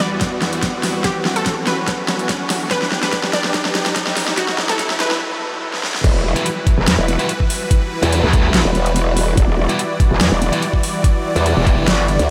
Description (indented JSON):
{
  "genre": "heavy wobble dubstep",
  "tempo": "144 BPM",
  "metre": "4/4",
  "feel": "half-time",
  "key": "E minor",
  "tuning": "A4 = 440 Hz",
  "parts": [
    { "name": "unison pluck", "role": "melody", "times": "0.0-6.0 s", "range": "F#4 to D5", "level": "-28 LUFS", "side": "equal", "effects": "analog delay" },
    { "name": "supersaw chords", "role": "sustained chords", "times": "0.0-12.3 s", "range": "E2 to D5", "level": "-26 LUFS", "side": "equal", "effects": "sidechain pumping" },
    { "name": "big-room dance drum kit", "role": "drums", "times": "0.0-12.3 s", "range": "crash cymbal, hi-hat, snare drum", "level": "-23 LUFS", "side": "equal", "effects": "none" },
    { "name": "riser", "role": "sound effects", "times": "0.1-5.2 s", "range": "none", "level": "-31 LUFS", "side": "equal", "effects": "none" },
    { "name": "warbly tape-like pad", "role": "texture", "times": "0.1-12.3 s", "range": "E4 to D5", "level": "-34 LUFS", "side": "equal", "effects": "none" },
    { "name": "electronic kick drum", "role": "drums", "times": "0.2-11.8 s", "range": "none", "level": "-18 LUFS", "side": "equal", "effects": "none" },
    { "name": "growl bass", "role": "bass", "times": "6.0-12.3 s", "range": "E1 to E2", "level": "-19 LUFS", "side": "equal", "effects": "chorus, overdrive" },
    { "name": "sludgy distorted guitar", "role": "stabs", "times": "6.4-11.9 s", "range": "G3 to F#4", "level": "-26 LUFS", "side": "equal", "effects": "overdrive, analog delay" },
    { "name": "metallic wobble bass", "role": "bass", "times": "6.8-12.2 s", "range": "E1 to E2", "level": "-19 LUFS", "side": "equal", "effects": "chorus, overdrive" }
  ],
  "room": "moderate huge ambient reverb, RT60 8.5 s",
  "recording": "dreamy mix soaked in reverb, high-pass filter",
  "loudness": "-17 LUFS",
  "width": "mono",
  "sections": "0.0-6.0 A section; 6.0-12.3 B section",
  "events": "build-up 0.0-6.0; drum fill 0.0-5.2, 5.7-6.0; riser 0.1-5.2; break 5.2-6.0; drop 6.0-12.3",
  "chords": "0.0 Emadd9"
}